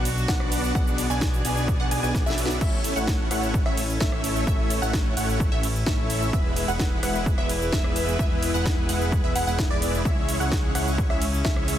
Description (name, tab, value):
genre	EDM, festival progressive house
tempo	129 BPM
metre	4/4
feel	straight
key	A major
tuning	A4 = 440 Hz
part	dark studio string section	sustained chords	0.0-11.8 s	C#3 to B4	-32 LUFS	left 2 dB	sidechain pumping
part	wide unison pluck	arpeggios	0.0-11.8 s	D5 to G#5	-33 LUFS	right 1 dB	sidechain pumping, dub echo
part	dense compressed supersaw	riff	0.0-11.8 s	G#3 to G#5	-29 LUFS	equal	sidechain pumping, dub echo
part	fat analog bass	bass	0.0-11.8 s	E1 to C#2	-28 LUFS	equal	sidechain pumping
part	house drum kit	drums	0.1-11.8 s	crash cymbal, hi-hat, ride cymbal, rim click, shaker, snare drum	-31 LUFS	right 1 dB	overdrive
part	electronic kick drum	drums	0.3-11.5 s	none	-25 LUFS	equal	overdrive
room	little or no reverb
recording	dense, heavily limited modern master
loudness	-21 LUFS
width	side -11 dB against mid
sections	0.0-11.8 A section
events	drum fill 2.1-2.6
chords	0.0 Bm; 2.6 A; 6.3 E; 10.1 C#m